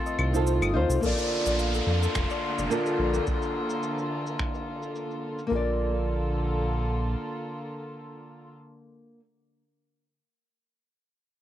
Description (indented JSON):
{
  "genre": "sunset chillout",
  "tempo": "107 BPM",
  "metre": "4/4",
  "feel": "swing 55% on 16ths",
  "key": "Bb major",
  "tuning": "A4 = 440 Hz",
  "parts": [
    { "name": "dark chamber string section", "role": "sustained chords", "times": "0.0-8.5 s", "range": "D3 to A4", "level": "-32 LUFS", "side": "left 1 dB", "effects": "cassette tape" },
    { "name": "soft round pluck", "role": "arpeggios", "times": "0.0-5.8 s", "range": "A4 to Eb6", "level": "-35 LUFS", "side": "left 9 dB", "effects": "analog chorus, cassette tape, tape echo" },
    { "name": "electronic shaker, claves and finger snaps", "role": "drums", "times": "0.1-5.5 s", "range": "none", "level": "-34 LUFS", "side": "left 1 dB", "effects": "overdrive, low-pass filter on perc, cassette tape, low-pass filter on snare" },
    { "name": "round analog bass", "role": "bass", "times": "0.2-7.2 s", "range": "F1 to F2", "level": "-27 LUFS", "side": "equal", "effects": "none" },
    { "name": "nylon-string guitar", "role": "accompaniment", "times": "0.3-9.2 s", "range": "Bb3 to D5", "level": "-30 LUFS", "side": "moving between left 3 dB and right 5 dB", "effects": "auto-pan, cassette tape, tape echo" },
    { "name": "electronic kick drum", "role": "drums", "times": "1.0-4.5 s", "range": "none", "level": "-32 LUFS", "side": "equal", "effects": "cassette tape" },
    { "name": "downlifter", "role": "sound effects", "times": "1.0-5.5 s", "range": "none", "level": "-34 LUFS", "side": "equal", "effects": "none" }
  ],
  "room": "moderate booth ambience, RT60 0.2 s",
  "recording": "home recording on cassette",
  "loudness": "-25 LUFS",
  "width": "side -12 dB against mid",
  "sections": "0.0-1.0 A section; 1.0-5.5 B section; 5.5-7.8 C section",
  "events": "none",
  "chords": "0.0 F7; 1.0 Bbmaj7",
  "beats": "0.47 | 1.03 1.59 2.15 2.71 | 3.27 3.83 4.39 4.96 | 5.51 6.08 6.64 7.20"
}